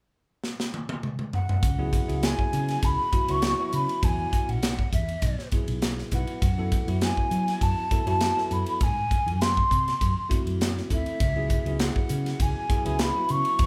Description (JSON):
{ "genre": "electric jazz fusion", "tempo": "100 BPM", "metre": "4/4", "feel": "swing 54% on 16ths", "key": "C# minor", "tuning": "A4 = 440 Hz", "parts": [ { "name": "crisp fusion drum kit", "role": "drums", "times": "0.4-13.7 s", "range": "hi-hat, kick drum, ride cymbal, snare drum, toms", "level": "-29 LUFS", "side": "equal", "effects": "none" }, { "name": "breathy mellow jazz flute", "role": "melody", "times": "1.3-13.7 s", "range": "E5 to C#6", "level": "-31 LUFS", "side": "equal", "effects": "none" }, { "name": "woody fretless electric bass", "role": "bass", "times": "1.6-13.7 s", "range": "B1 to F#3", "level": "-32 LUFS", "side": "equal", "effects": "none" }, { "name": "bell-like tine electric piano", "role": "accompaniment", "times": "1.8-13.7 s", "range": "F#3 to B4", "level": "-35 LUFS", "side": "equal", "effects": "none" } ], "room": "light reverb", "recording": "band playing live in one room", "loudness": "-26 LUFS", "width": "mono", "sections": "0.0-1.6 A section; 1.6-13.7 B section", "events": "drum fill 0.4-1.6", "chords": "0.0 N.C.; 1.6 C#m7; 6.4 F#m11; 8.8 G#7b9b13; 11.2 C#m7", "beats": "0.43 1.03 | 1.62 2.23 2.82 3.42 | 4.02 4.62 5.22 5.82 | 6.42 7.02 7.62 8.21 | 8.81 9.41 10.01 10.61 | 11.21 11.80 12.40 13.00 | 13.60" }